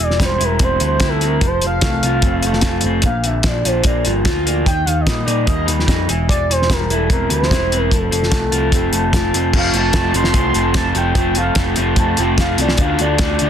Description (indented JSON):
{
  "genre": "indie rock",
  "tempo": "148 BPM",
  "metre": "4/4",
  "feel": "straight",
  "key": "unclear",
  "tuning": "A4 = 440 Hz",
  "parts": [
    { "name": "expressive synth lead", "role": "melody", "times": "0.0-13.5 s", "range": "A4 to C6", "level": "-22 LUFS", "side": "equal", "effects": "chorus, tape echo" },
    { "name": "electric guitar through a small old amp", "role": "riff", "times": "0.0-13.5 s", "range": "Bb2 to F4", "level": "-19 LUFS", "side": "equal", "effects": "none" },
    { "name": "picked electric bass", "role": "bass", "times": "0.0-13.5 s", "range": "E1 to Bb2", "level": "-20 LUFS", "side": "equal", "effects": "none" },
    { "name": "cloth-damped thuddy drum kit", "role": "drums", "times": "0.1-13.5 s", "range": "crash cymbal, hi-hat, kick drum, snare drum", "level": "-18 LUFS", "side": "equal", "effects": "none" }
  ],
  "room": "light reverb",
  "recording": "dense, heavily limited modern master",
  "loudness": "-14 LUFS",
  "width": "side -9 dB against mid",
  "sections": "0.0-9.5 A section; 9.5-13.5 B section",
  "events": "analog synth lead solo 9.5-13.5",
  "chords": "0.0 C/E; 1.4 F; 3.0 Bb; 4.7 Eb; 6.1 C/E; 7.9 F; 12.8 Dm",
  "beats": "0.20 0.61 1.01 | 1.42 1.83 2.23 2.64 | 3.04 3.45 3.86 4.26 | 4.67 5.08 5.48 5.89 | 6.29 6.70 7.11 7.51 | 7.92 8.32 8.73 9.14 | 9.54 9.95 10.36 10.77 | 11.17 11.58 11.99 12.40 | 12.80 13.21"
}